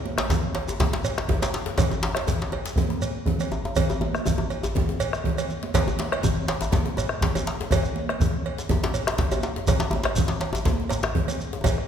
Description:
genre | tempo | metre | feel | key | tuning
west african traditional, West African drum ensemble | 122 BPM | 4/4 | swing 53% on 16ths | none | none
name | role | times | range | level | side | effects
congas | percussion | 0.1-11.8 s | none | -29 LUFS | right 4 dB | none
bombo | percussion | 0.2-11.8 s | none | -27 LUFS | equal | none
cowbell | percussion | 0.2-11.8 s | none | -32 LUFS | right 5 dB | none
djembe | percussion | 0.2-11.8 s | none | -29 LUFS | left 2 dB | none
djembe | percussion | 0.3-11.8 s | none | -31 LUFS | left 5 dB | none
shekere | percussion | 0.3-11.8 s | none | -34 LUFS | right 1 dB | none
room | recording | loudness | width
wet scoring stage reverb, RT60 1.7 s | minimal, uncompressed stereo recording | -22 LUFS | side -8 dB against mid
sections
0.0-11.9 A section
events
drum fill 5.4-5.7, 11.6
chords
none

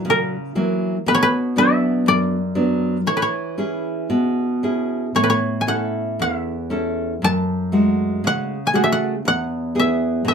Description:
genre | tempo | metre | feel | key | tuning
fado | 59 BPM | 2/4 | rubato | A major | A4 = 440 Hz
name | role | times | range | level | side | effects
koto | melody | 0.0-10.3 s | A#4 to A5 | -20 LUFS | left 1 dB | none
nylon-string guitar | accompaniment | 0.0-10.3 s | E2 to A4 | -20 LUFS | equal | none
room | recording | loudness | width
wet small room ambience, RT60 0.5 s | minimal, uncompressed stereo recording | -18 LUFS | side -6 dB against mid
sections
0.0-10.3 A section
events
none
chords
0.0 F#7; 1.1 Bm; 3.1 E6; 5.2 A; 7.2 F#madd9; 9.3 E

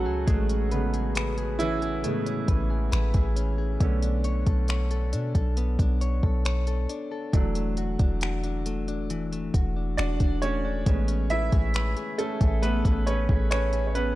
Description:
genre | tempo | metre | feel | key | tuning
contemporary R&B | 68 BPM | 4/4 | straight | A major | A4 = 440 Hz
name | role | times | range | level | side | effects
bright baby grand piano | accompaniment | 0.0-14.2 s | C#3 to E5 | -31 LUFS | right 3 dB | none
direct-recorded clean electric guitar | arpeggios | 0.0-14.2 s | E3 to C#5 | -32 LUFS | left 5 dB | none
soft 808-style bass | bass | 0.0-14.2 s | E1 to B2 | -27 LUFS | equal | none
smooth R&B drum kit | drums | 0.3-14.2 s | finger snaps, hi-hat, kick drum | -26 LUFS | equal | vintage 12-bit sampler grit
room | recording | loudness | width
little or no reverb | dark, warm production | -23 LUFS | side -16 dB against mid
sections
0.0-14.2 A section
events
grand piano solo 0.0-14.2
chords
0.0 Amaj9; 3.8 Bm9; 7.3 E9sus4; 10.9 Amaj9

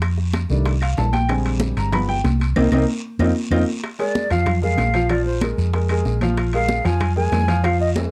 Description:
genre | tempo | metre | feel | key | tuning
Afro-Cuban jazz | 189 BPM | 4/4 | straight | Bb mixolydian | A4 = 440 Hz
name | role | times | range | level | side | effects
hollow-body short-scale fingered electric bass | bass | 0.0-8.1 s | G1 to F2 | -23 LUFS | equal | none
bongos | percussion | 0.0-8.1 s | none | -34 LUFS | equal | none
claves | percussion | 0.0-8.1 s | none | -37 LUFS | equal | none
congas | percussion | 0.0-8.1 s | none | -28 LUFS | equal | none
guiro | percussion | 0.0-8.1 s | none | -42 LUFS | equal | none
timbales | percussion | 0.0-8.0 s | none | -33 LUFS | equal | none
warm upright piano | accompaniment | 0.5-8.1 s | D3 to B5 | -25 LUFS | equal | none
breathy jazz flute | melody | 4.0-7.9 s | C5 to Ab5 | -26 LUFS | equal | none
room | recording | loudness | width
light reverb | dark, warm production | -20 LUFS | mono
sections
0.0-3.8 A section; 3.8-8.1 A section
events
upright piano solo 0.0-3.8; drum fill 2.6-3.8, 8.0; band accent 2.6-3.8; flute solo 3.8-8.1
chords
0.0 F13; 1.3 Bb13; 1.9 G7b9; 2.6 Cm7; 3.2 F5; 3.8 Bb7(no3)

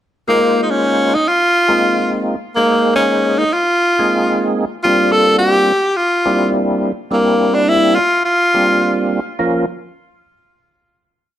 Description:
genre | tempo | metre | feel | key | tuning
jazz | 105 BPM | 4/4 | straight | unclear | A4 = 440 Hz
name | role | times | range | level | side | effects
bright tenor saxophone | melody | 0.3-9.1 s | Bb3 to A4 | -14 LUFS | equal | none
percussive tonewheel organ | accompaniment | 0.3-9.7 s | F3 to C5 | -17 LUFS | right 1 dB | slow rotary speaker, overdrive, chorus vibrato
room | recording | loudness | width
moderate club reverb, RT60 0.8 s | none | -12 LUFS | side -11 dB against mid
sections
0.3-9.4 groove; 9.4-11.4 final chord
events
none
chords
0.3 Bb9sus4; 4.8 C9sus4; 9.4 Bbm

